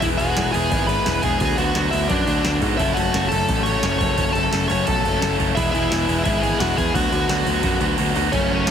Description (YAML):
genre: punk rock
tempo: 173 BPM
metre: 4/4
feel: straight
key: unclear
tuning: A4 = 440 Hz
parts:
  - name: smooth overdriven lead guitar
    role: melody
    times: 0.0-8.7 s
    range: C#4 to C#6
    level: -23 LUFS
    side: equal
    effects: none
  - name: crunchy overdriven guitar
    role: riff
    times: 0.0-8.7 s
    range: F#2 to A4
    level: -24 LUFS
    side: left 15 dB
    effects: none
  - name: tight distorted guitar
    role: riff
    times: 0.0-8.7 s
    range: F#2 to A4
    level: -25 LUFS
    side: right 17 dB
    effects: distortion
  - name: modern bright picked electric bass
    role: bass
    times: 0.0-8.7 s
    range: E1 to G#2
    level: -25 LUFS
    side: right 1 dB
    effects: none
  - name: booming analog drum machine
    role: drums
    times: 0.0-8.7 s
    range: crash cymbal, kick drum, snare drum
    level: -25 LUFS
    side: right 1 dB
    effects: none
room: little or no reverb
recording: heavily compressed radio sound, multiband compression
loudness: -17 LUFS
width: side -8 dB against mid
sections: 0.0-8.3 A section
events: kick and snare drop out 8.0-8.3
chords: 0.0 E; 1.4 Bm/D; 2.8 F#m; 5.6 E; 6.9 Bm/D